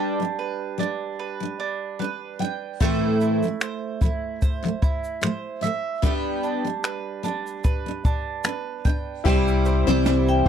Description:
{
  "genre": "acoustic pop",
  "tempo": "74 BPM",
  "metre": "4/4",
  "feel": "swing 55% on 16ths",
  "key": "G major",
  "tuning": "A4 = 440 Hz",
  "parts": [
    { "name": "picked steel-string acoustic guitar", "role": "accompaniment", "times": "0.0-10.5 s", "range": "A2 to C5", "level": "-24 LUFS", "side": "left 1 dB", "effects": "double-tracked left and right" },
    { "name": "mandolin", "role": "arpeggios", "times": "0.0-10.5 s", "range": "G3 to G5", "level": "-29 LUFS", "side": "right 7 dB", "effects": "none" },
    { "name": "jazz brush drum kit", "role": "drums", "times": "2.8-10.5 s", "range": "crash cymbal, finger snaps, kick drum, shaker, snare drum", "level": "-23 LUFS", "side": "equal", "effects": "none" },
    { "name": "clear concert grand piano", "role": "accompaniment", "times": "9.2-10.5 s", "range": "E4 to G5", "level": "-27 LUFS", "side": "left 5 dB", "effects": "none" },
    { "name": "deep dub fingered electric bass", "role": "bass", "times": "9.3-10.5 s", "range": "C2", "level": "-22 LUFS", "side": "equal", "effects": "none" },
    { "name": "vibraphone with hard mallets", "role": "second line", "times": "10.3-10.5 s", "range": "E5 to G5", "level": "-22 LUFS", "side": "left 4 dB", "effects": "none" }
  ],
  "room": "little or no reverb",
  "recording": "dry, close 1970s-style studio recording",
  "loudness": "-22 LUFS",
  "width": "side -8 dB against mid",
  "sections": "0.0-9.3 A section; 9.3-10.5 B section",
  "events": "none",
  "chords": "0.0 G; 2.8 Am; 6.0 G; 9.3 C"
}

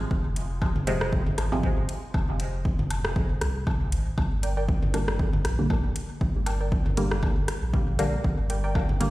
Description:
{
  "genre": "dub techno",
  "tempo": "118 BPM",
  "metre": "4/4",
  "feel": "swing 56% on 16ths",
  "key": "G phrygian",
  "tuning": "A4 = 440 Hz",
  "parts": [
    { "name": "pure sine sub bass", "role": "bass", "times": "0.0-9.1 s", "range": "F1 to C2", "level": "-28 LUFS", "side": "equal", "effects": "sidechain pumping" },
    { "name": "electronic kick drum", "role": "drums", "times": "0.1-8.9 s", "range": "none", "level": "-27 LUFS", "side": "equal", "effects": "overdrive, studio reverb" },
    { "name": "deep house drum kit", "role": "drums", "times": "0.4-9.1 s", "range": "hi-hat, rim click", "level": "-33 LUFS", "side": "equal", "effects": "overdrive, studio reverb, dub echo" },
    { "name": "electronic woodblock and toms", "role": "percussion", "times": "0.6-9.0 s", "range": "none", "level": "-36 LUFS", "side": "left 1 dB", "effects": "sidechain pumping on perc, studio reverb, sidechain pumping on toms, dub echo" },
    { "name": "filtered dub chord stab", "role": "stabs", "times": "0.9-9.1 s", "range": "C3 to Bb3", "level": "-31 LUFS", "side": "equal", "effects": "chorus, phaser, sidechain pumping, dub echo" },
    { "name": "filtered dub chord stab", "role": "riff", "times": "4.4-8.7 s", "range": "Bb4 to G5", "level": "-36 LUFS", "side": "right 2 dB", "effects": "chorus, sidechain pumping, dub echo" }
  ],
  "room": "light reverb",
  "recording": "played on a big sound system in a bare room, stone room reverb",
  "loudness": "-24 LUFS",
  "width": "side -18 dB against mid",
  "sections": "0.0-9.1 A section",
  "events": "none",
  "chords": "0.0 Fm; 4.2 Gm"
}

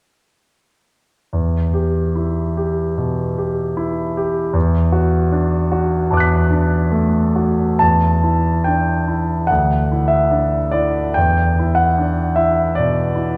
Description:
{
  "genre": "classical, impressionist solo piano",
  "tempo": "73 BPM",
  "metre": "4/4",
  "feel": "uneven beats, rubato",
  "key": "E minor",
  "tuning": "A4 = 441 Hz",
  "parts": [
    { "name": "clear concert grand piano", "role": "solo", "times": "1.3-13.4 s", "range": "D2 to B6", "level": "-17 LUFS", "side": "equal", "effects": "none" }
  ],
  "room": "wet concert hall reverb, RT60 2.4 s",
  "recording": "heard from further back in the room",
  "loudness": "-17 LUFS",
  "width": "mono",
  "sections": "1.3-7.8 A section; 7.8-13.4 B section",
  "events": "none",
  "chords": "1.3 Em; 4.5 D69/E; 7.8 Em7; 9.5 Dsus2; 11.2 E5"
}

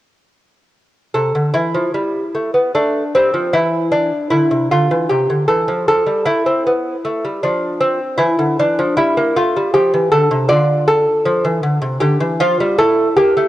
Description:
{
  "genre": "classical, baroque-style dance for lute",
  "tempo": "78 BPM",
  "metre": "3/4",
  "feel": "rubato",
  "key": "A minor",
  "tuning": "A4 = 443 Hz",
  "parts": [
    { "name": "lute", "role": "solo", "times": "1.1-13.5 s", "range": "C3 to D5", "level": "-13 LUFS", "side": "equal", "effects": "none" }
  ],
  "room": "light reverb, small room ambience",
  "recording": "home recording on cassette",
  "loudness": "-13 LUFS",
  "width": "side -14 dB against mid",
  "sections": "1.2-13.5 A section",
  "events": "none",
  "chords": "1.2 Am/C; 3.5 Cadd9 (rootless); 5.1 Am/C; 5.9 F; 8.2 Dmadd9; 9.7 F; 12.8 A5"
}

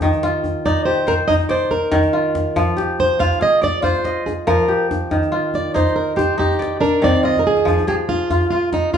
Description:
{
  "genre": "west african traditional, West African string and xylophone music",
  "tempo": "94 BPM (dotted quarters)",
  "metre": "12/8",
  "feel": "straight",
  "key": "F dorian",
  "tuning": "A4 = 439 Hz",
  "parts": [
    { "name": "kora", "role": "arpeggios", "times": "0.0-9.0 s", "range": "Eb3 to Eb5", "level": "-20 LUFS", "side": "equal", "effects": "none" },
    { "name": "djembe", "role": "percussion", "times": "0.0-9.0 s", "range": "none", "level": "-23 LUFS", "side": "left 1 dB", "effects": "none" },
    { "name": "fingerpicked plugged-in swing-style acoustic guitar", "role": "melody", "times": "0.7-9.0 s", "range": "C4 to F5", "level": "-18 LUFS", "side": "right 1 dB", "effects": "none" }
  ],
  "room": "wet large studio reverb, RT60 0.8 s",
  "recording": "band playing live in one room, nothing above 10.5 kHz",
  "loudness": "-15 LUFS",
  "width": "side -8 dB against mid",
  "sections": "0.0-7.7 A section; 7.7-9.0 B section",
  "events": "steel-string acoustic guitar solo 0.0-7.7; drum fill 7.3-7.7",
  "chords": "0.0 Eb; 2.6 Fm; 5.1 Eb; 7.7 Fm"
}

